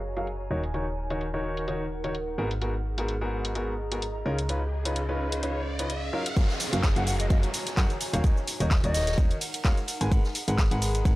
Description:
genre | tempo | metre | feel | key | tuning
piano house | 128 BPM | 4/4 | swing 55% on 16ths | F# major | A4 = 440 Hz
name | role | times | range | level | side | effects
solid FM bass | bass | 0.0-11.2 s | D#1 to F#2 | -30 LUFS | equal | sidechain pumping
warbly tape-like pad | texture | 0.0-11.2 s | C#4 to A#5 | -37 LUFS | right 1 dB | chorus, built-in reverb, sidechain pumping
clear baby grand piano | riff | 0.2-11.2 s | G#2 to G#5 | -32 LUFS | equal | sidechain pumping, tape echo
house drum kit | drums | 0.2-11.2 s | handclaps, hi-hat, rim click, shaker | -33 LUFS | equal | small room ambience
riser and downlifter | sound effects | 4.1-10.1 s | none | -38 LUFS | equal | none
electronic kick drum | drums | 6.4-11.2 s | none | -23 LUFS | equal | small room ambience
open jazz drum kit | drums | 6.4-11.2 s | hi-hat, ride cymbal, snare drum | -41 LUFS | left 1 dB | sidechain pumping on cymbals, high-pass filter on cymbals, small room ambience, sidechain pumping on hats, high-pass filter on hats, high-pass filter on snare, high-pass filter on room
concert flute | melody | 7.0-9.2 s | D#5 to F#5 | -34 LUFS | left 1 dB | tape echo
room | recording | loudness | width
small room reverb | dry, gritty hardware recording, low-pass filter | -25 LUFS | side -18 dB against mid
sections
0.0-6.4 A section; 6.4-11.2 B section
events
filter sweep 0.0-6.4; riser 4.1-6.4; drop 6.4-11.2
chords
0.0 F#maj9; 0.5 D#m7; 2.4 G#m9; 4.3 C#9; 6.4 F#maj9; 8.0 D#m7; 9.9 G#m9

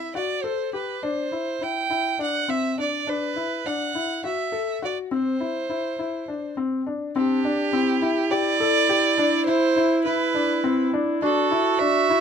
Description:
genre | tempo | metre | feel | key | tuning
contemporary instrumental, chamber music in an uneven meter | 206 BPM (eighths) | 7/8 | straight | C lydian | A4 = 441 Hz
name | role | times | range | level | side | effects
rich violin | melody | 0.0-12.2 s | G4 to G5 | -25 LUFS | right 4 dB | none
felt-muted upright piano | arpeggios | 0.0-12.2 s | C4 to A4 | -25 LUFS | left 4 dB | none
mellow clarinet | second line | 7.2-12.2 s | D4 to F#4 | -24 LUFS | right 4 dB | none
room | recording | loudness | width
light reverb | close, detailed microphones | -21 LUFS | side -7 dB against mid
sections
0.0-7.2 A section; 7.2-12.2 A section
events
none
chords
0.0 Cadd9; 3.1 Bm7; 5.1 C; 7.2 Cadd9; 11.2 Bm7 (rootless)

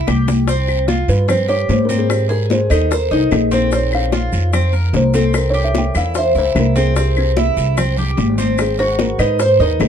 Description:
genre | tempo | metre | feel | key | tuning
latin, Cuban son and guajira | 148 BPM | 4/4 | straight | unclear | A4 = 442 Hz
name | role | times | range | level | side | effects
kalimba | melody | 0.0-9.9 s | C4 to G5 | -20 LUFS | equal | plate reverb
Cuban tres | arpeggios | 0.0-9.9 s | C4 to C5 | -20 LUFS | right 1 dB | none
upright bass | bass | 0.0-9.9 s | Ab1 to Ab2 | -17 LUFS | right 1 dB | none
bongos | percussion | 0.1-9.9 s | none | -22 LUFS | left 7 dB | none
claves | percussion | 0.1-9.9 s | none | -29 LUFS | left 6 dB | none
congas | percussion | 0.1-9.9 s | none | -22 LUFS | left 4 dB | none
guiro | percussion | 0.1-9.9 s | none | -33 LUFS | right 5 dB | none
maracas | percussion | 0.1-9.9 s | none | -37 LUFS | left 3 dB | none
room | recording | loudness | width
light reverb | dark, warm production | -13 LUFS | side -8 dB against mid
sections
0.5-9.9 A section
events
drum fill 0.0-0.5, 6.8; kalimba solo 0.5-9.9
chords
0.5 Csus4; 2.1 Ab; 3.7 Bbsus2; 5.3 C; 8.6 Ab7

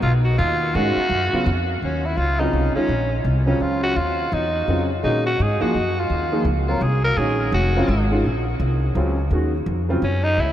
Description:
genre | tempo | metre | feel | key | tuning
modal jazz | 168 BPM | 3/4 | swing 62% on 8ths | Eb dorian | A4 = 439 Hz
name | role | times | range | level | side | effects
growling tenor saxophone | melody | 0.0-10.5 s | Db4 to Bb4 | -23 LUFS | equal | diffuse ambient delay
upright bass | bass | 0.0-10.5 s | F1 to Bb2 | -21 LUFS | equal | none
warm upright piano | accompaniment | 0.7-10.0 s | Db3 to Bb4 | -24 LUFS | equal | lush chorus
room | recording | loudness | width
moderate huge ambient reverb, RT60 8.6 s | dreamy mix soaked in reverb | -18 LUFS | side -11 dB against mid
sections
0.0-1.8 A section; 1.8-10.4 B section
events
tenor saxophone solo 1.8-10.5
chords
0.0 Db9sus4; 1.8 Ebm11

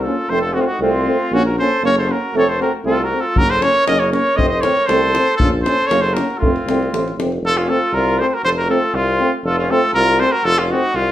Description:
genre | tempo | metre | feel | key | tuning
balkan folk, Balkan brass band | 118 BPM | 2/4 | straight | F phrygian dominant | A4 = 441 Hz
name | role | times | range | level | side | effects
warm trumpet | melody | 0.0-11.1 s | F4 to Eb5 | -17 LUFS | equal | none
warm flugelhorn | second line | 0.0-11.1 s | C4 to C5 | -24 LUFS | right 2 dB | none
mellow euphonium | accompaniment | 0.0-10.8 s | A3 to Bb3 | -23 LUFS | right 3 dB | none
warm tuba | bass | 0.0-11.1 s | F1 to C2 | -22 LUFS | equal | none
clear euphonium | accompaniment | 0.1-10.8 s | C4 to Db4 | -23 LUFS | left 3 dB | none
davul | percussion | 3.4-7.4 s | none | -21 LUFS | left 1 dB | none
room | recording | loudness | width
wet studio reverb, RT60 0.6 s | heard from further back in the room | -14 LUFS | side -12 dB against mid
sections
0.0-7.4 A section; 7.4-11.1 B section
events
none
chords
0.3 F; 1.3 Bbm; 2.3 F; 3.4 Gb; 4.4 F; 5.4 Bbm; 6.4 F

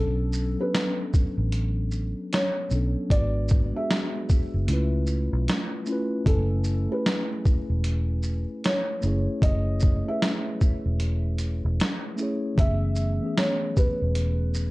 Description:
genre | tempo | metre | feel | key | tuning
lo-fi hip hop | 76 BPM | 4/4 | swing 63% on 16ths | F# minor | A4 = 439 Hz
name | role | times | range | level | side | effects
felt-muted upright piano | melody | 0.0-14.7 s | A4 to E5 | -31 LUFS | equal | analog delay
mellow tine electric piano | accompaniment | 0.0-14.7 s | E3 to G#5 | -30 LUFS | left 1 dB | slow stereo tremolo, cassette tape
vintage muted fingered electric bass | bass | 0.0-14.7 s | E1 to C#2 | -25 LUFS | equal | none
boom bap sampler-style drum kit | drums | 0.3-14.7 s | hi-hat, kick drum, shaker, snare drum | -24 LUFS | equal | vintage 12-bit sampler grit
room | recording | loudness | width
little or no reverb | dark, warm production | -23 LUFS | side -20 dB against mid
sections
0.0-12.6 A section; 12.6-14.7 B section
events
none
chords
0.0 Bm9; 3.1 G#m7b5; 4.7 C#7alt; 6.3 F#m11

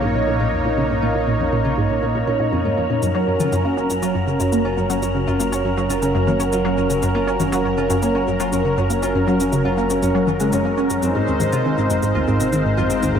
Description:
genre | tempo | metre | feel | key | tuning
ambient, sequencer-driven space music | 120 BPM | 4/4 | straight | unclear | A4 = 440 Hz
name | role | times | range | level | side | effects
lush unison pad | sustained chords | 0.0-13.2 s | Gb3 to Db5 | -21 LUFS | equal | chorus
Celtic harp | arpeggios | 0.0-13.2 s | Db3 to F4 | -26 LUFS | moving between left 5 dB and right 3 dB | auto-pan, ping-pong delay
resonant blip pluck | riff | 0.0-13.2 s | Eb2 to Db4 | -21 LUFS | equal | lush chorus, ping-pong delay
analog drone | bass | 0.0-13.2 s | Gb1 to Bb1 | -29 LUFS | equal | chorus
wind-like tuned noise texture | texture | 0.0-13.2 s | Bb4 to Bb5 | -29 LUFS | right 1 dB | built-in reverb
electronic cabasa and toms | percussion | 3.0-13.1 s | none | -28 LUFS | left 3 dB | ping-pong delay
room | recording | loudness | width
moderate plate reverb, RT60 2.5 s | none | -17 LUFS | side -8 dB against mid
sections
0.0-13.2 A section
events
fade-in on harp 0.0-13.2; filter sweep on synth arpeggio sound 0.0-13.2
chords
0.0 Bbm; 3.0 Gb; 11.0 Ab

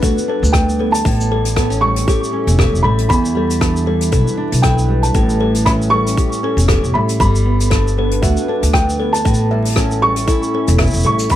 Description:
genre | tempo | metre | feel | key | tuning
folktronica | 117 BPM | 4/4 | swing 56% on 16ths | A mixolydian | A4 = 440 Hz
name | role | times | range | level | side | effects
music box | second line | 0.0-11.2 s | A4 to E5 | -24 LUFS | left 4 dB | tape echo
warbly tape-like pad | sustained chords | 0.0-11.4 s | G3 to E5 | -27 LUFS | equal | chorus, built-in reverb, vintage 12-bit sampler grit
nylon-string guitar | arpeggios | 0.0-11.4 s | E2 to G4 | -22 LUFS | right 1 dB | vintage 12-bit sampler grit, tape echo
upright bass | bass | 0.0-11.4 s | E1 to E2 | -16 LUFS | equal | tube saturation
electronic kick drum | drums | 0.0-11.4 s | none | -17 LUFS | equal | none
jazz brush drum kit | drums | 0.0-11.4 s | hi-hat, rim click, shaker | -24 LUFS | left 1 dB | none
felt-muted upright piano | melody | 0.5-11.4 s | G5 to C#6 | -20 LUFS | right 1 dB | none
room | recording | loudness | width
light reverb | vinyl crackle | -13 LUFS | side -12 dB against mid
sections
0.0-11.4 A section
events
none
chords
0.0 Gmaj7; 1.1 A7; 3.1 Em7; 5.2 A7; 7.2 Gmaj7; 9.3 A7

